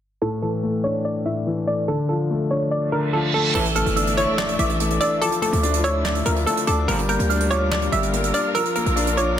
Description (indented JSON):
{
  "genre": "hip hop, trap",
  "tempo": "144 BPM",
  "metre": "4/4",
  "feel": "half-time",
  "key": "unclear",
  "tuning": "A4 = 440 Hz",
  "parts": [
    { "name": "hollow square pluck", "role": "melody", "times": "0.2-9.3 s", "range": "A4 to E5", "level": "-24 LUFS", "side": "equal", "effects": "chorus, low-pass filter, ping-pong delay" },
    { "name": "clear concert grand piano", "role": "accompaniment", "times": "0.2-9.4 s", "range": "A2 to F4", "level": "-24 LUFS", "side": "left 3 dB", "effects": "low-pass filter" },
    { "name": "reverse cymbal and impact", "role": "sound effects", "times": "3.0-5.2 s", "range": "none", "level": "-28 LUFS", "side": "right 3 dB", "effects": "none" },
    { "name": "warm symphonic string section", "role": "sustained chords", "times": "3.5-9.4 s", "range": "D3 to E5", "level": "-29 LUFS", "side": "equal", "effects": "none" },
    { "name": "warm brass ensemble", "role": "stabs", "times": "3.5-3.7, 6.9-7.0 s", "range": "A2 to F3", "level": "-31 LUFS", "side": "right 3 dB", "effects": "none" },
    { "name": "distorted 808-style bass", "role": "bass", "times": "3.5-9.4 s", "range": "G1 to D2", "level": "-23 LUFS", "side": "equal", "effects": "distortion" },
    { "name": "soft brush drum kit", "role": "drums", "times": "3.5-9.3 s", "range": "crash cymbal, handclaps, hi-hat, snare drum", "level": "-27 LUFS", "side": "right 4 dB", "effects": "none" },
    { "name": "soft synth bell", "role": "second line", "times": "3.8-9.4 s", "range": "C#6 to G6", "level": "-27 LUFS", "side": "right 3 dB", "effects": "chorus, ping-pong delay" }
  ],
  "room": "light reverb, small room reverb",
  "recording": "dense, heavily limited modern master, low-pass filter",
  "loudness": "-19 LUFS",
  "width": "side -10 dB against mid",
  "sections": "0.2-3.5 A section; 3.5-9.4 B section",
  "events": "filter sweep 0.2-3.5; reverse cymbal 3.0-3.5; impact 3.5-5.2",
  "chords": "0.2 Asus4; 1.9 Dm; 3.5 Asus4; 5.2 Dmadd9; 6.9 Gm7; 8.5 Bb"
}